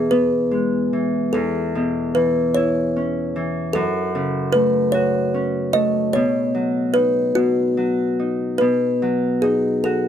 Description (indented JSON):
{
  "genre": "children's music, lullaby",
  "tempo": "49 BPM (dotted quarters)",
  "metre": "6/8",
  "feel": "rubato",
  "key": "unclear",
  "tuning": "A4 = 440 Hz",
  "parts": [
    { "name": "kalimba", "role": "melody", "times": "0.0-10.1 s", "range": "F#4 to D#5", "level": "-20 LUFS", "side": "equal", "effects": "none" },
    { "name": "Celtic harp", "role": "accompaniment", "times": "0.0-10.1 s", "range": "E2 to F#4", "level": "-21 LUFS", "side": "left 1 dB", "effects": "none" }
  ],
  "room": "light reverb",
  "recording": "close, detailed microphones",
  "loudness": "-17 LUFS",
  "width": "side -9 dB against mid",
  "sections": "0.0-10.1 A section",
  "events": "none",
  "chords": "0.0 E; 1.3 Aadd9/E; 3.8 F#m; 6.1 B"
}